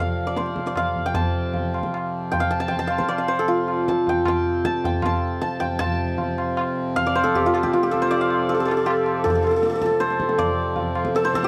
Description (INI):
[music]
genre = indian classical, Hindustani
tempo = 156 BPM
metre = 3/4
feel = straight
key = F raga bhupali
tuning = A4 = 439 Hz
[part]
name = santur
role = melody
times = 0.0-11.5 s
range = F4 to A5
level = -24 LUFS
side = equal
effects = none
[part]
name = hand-pumped harmonium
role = drone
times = 0.0-11.5 s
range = F2 to C3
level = -31 LUFS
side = equal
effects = none
[part]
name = tabla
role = percussion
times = 0.4-11.5 s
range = none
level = -29 LUFS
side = equal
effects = none
[sound]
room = little or no reverb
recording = dry, close 1970s-style studio recording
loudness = -22 LUFS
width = mono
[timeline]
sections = 0.0-5.8 A section; 5.8-11.5 B section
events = speeding up 0.0-11.5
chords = none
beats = 0.36 0.76 | 1.15 1.54 1.93 | 2.32 2.71 3.10 | 3.49 3.88 4.26 | 4.65 5.04 5.42 | 5.81 6.19 6.58 | 6.96 7.34 7.73 | 8.11 8.49 8.87 | 9.25 9.63 10.01 | 10.39 10.77 11.15